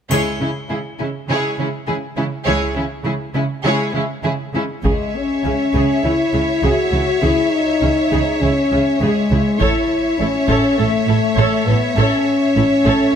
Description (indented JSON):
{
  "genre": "cinematic, epic orchestral film score",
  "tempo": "101 BPM",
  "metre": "4/4",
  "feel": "straight",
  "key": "C# minor",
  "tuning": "A4 = 440 Hz",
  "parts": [
    { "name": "rich symphonic violin section", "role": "second line", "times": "0.1-13.2 s", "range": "C#4 to E5", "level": "-23 LUFS", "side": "left 1 dB", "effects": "none" },
    { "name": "rich symphonic viola section", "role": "accompaniment", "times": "0.1-13.1 s", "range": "G#3 to C#5", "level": "-23 LUFS", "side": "right 1 dB", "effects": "none" },
    { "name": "warm studio double bass section", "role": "bass", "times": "0.1-12.9 s", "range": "A1 to C#2", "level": "-22 LUFS", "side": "right 2 dB", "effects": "none" },
    { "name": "warm symphonic cello section", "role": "bass", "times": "0.1-12.9 s", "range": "A2 to C#3", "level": "-23 LUFS", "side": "right 2 dB", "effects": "none" },
    { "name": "triangle", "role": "percussion", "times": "0.1-1.3 s", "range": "none", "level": "-31 LUFS", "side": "left 3 dB", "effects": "none" },
    { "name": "warm French horn section", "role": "sustained chords", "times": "4.8-13.2 s", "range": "G#3 to F#4", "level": "-17 LUFS", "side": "left 2 dB", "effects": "none" },
    { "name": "taiko ensemble", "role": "drums", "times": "4.8-6.0, 9.6-10.8 s", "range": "none", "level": "-24 LUFS", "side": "equal", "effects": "none" }
  ],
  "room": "light reverb",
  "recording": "close, detailed microphones",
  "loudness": "-15 LUFS",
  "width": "side -8 dB against mid",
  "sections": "0.1-4.8 A section; 4.8-13.2 B section",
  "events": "none",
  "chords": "0.1 C#m; 9.6 A"
}